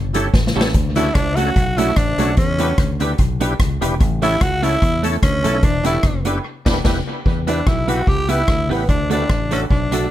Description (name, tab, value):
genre	ska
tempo	147 BPM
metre	4/4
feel	swing 53% on 8ths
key	E dorian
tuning	A4 = 439 Hz
part	fingered electric bass	bass	0.0-10.1 s	E1 to E2	-22 LUFS	equal	none
part	tonewheel organ	stabs	0.1-10.1 s	A3 to C#5	-26 LUFS	left 3 dB	overdrive, chorus vibrato, slow rotary speaker, dub echo
part	street-band drum kit	drums	0.1-10.0 s	crash cymbal, hi-hat, kick drum, rim click, snare drum	-19 LUFS	equal	none
part	semi-hollow electric guitar	accompaniment	0.2-10.1 s	G3 to B4	-24 LUFS	right 6 dB	lush chorus, dub echo
part	growling tenor saxophone	melody	1.0-10.1 s	B3 to G4	-20 LUFS	equal	none
room	light reverb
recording	none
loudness	-15 LUFS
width	side -13 dB against mid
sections	0.0-7.3 A section; 7.3-10.1 B section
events	drum fill 0.3-0.8; band accent 6.4-7.3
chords	0.0 A7; 0.8 Dmaj7; 2.4 Em7; 4.0 A; 5.6 Em7; 7.3 Em; 8.9 D